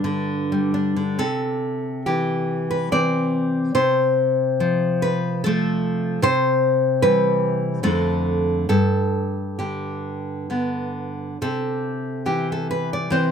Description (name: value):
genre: romantic piece for solo classical guitar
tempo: 63-76 BPM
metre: 3/4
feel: rubato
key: C major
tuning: A4 = 439 Hz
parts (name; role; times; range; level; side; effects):
- nylon-string guitar; solo; 0.0-13.3 s; F2 to D5; -19 LUFS; left 1 dB; none
room: light reverb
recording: close, detailed microphones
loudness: -19 LUFS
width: side -7 dB against mid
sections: 0.0-1.2 A section; 1.2-13.3 B section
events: none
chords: 0.0 G; 1.2 C; 3.7 F/C; 6.2 C; 7.8 Dm/F; 8.7 G; 11.4 C